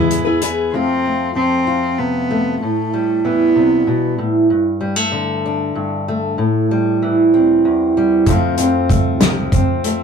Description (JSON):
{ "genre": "indie folk with a building arrangement", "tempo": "64 BPM (dotted quarters)", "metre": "6/8", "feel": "straight", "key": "unclear", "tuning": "A4 = 442 Hz", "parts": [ { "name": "warm cello", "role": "melody", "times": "0.0-4.2 s", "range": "G#3 to C4", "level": "-20 LUFS", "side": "equal", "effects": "none" }, { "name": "picked steel-string acoustic guitar", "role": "accompaniment", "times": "0.0-0.7 s", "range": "B3 to B4", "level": "-16 LUFS", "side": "left 4 dB", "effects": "none" }, { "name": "upright bass", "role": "bass", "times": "0.0-0.7, 8.3-9.5 s", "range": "C2 to F2", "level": "-26 LUFS", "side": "right 1 dB", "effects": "none" }, { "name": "loose indie drum kit", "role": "drums", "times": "0.1-0.6, 8.3-10.0 s", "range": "hi-hat, kick drum, snare drum", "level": "-16 LUFS", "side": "right 1 dB", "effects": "none" }, { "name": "fingerpicked steel-string acoustic guitar", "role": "accompaniment", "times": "0.7-10.0 s", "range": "E2 to F4", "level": "-15 LUFS", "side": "right 1 dB", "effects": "none" } ], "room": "light reverb", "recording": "rough rehearsal-room recording, tube saturation", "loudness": "-14 LUFS", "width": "side -6 dB against mid", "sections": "0.7-8.3 A section; 8.3-10.0 B section", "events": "build-up 8.3-10.0; drum fill 8.3-10.0", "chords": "0.0 E; 0.7 F; 2.6 Am7; 4.5 Gsus2; 6.4 Am7; 8.3 F" }